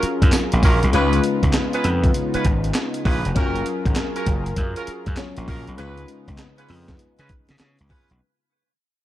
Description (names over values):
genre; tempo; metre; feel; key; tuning
R&B, new jack swing; 99 BPM; 4/4; swing 64% on 16ths; unclear; A4 = 441 Hz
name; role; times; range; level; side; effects
FM electric piano; accompaniment; 0.0-8.2 s; F#3 to C#5; -28 LUFS; left 6 dB; chorus
warm analog pad; sustained chords; 0.0-8.2 s; C#3 to A#4; -29 LUFS; equal; chorus, tremolo
warm horn section; stabs; 0.0-8.1 s; C#4 to B4; -28 LUFS; right 3 dB; digital delay
gritty slap bass; bass; 0.0-8.2 s; E#1 to C#3; -22 LUFS; equal; overdrive
breakbeat sampler-style drum kit; drums; 0.0-8.2 s; handclaps, hi-hat, kick drum, snare drum, tambourine; -21 LUFS; equal; none
room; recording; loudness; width
digital ambience; dark, warm production; -18 LUFS; side -13 dB against mid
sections
0.0-8.2 A section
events
fade-out 0.0-8.2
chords
0.0 F#maj7; 0.9 C#7; 3.4 F#maj7; 5.8 C#7